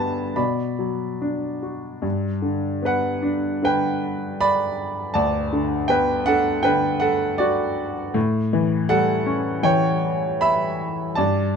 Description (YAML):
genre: classical, lyrical solo piano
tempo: 79 BPM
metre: 4/4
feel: uneven beats, rubato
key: unclear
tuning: A4 = 440 Hz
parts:
  - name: clear grand piano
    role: solo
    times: 0.0-11.6 s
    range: D2 to B5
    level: -20 LUFS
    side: equal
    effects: none
room: moderate small room reverb, RT60 0.6 s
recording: dark, warm production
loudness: -20 LUFS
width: side -6 dB against mid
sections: 0.0-2.1 A section; 2.1-11.6 B section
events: none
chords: 0.4 Bm; 2.1 Gmaj7; 8.2 A7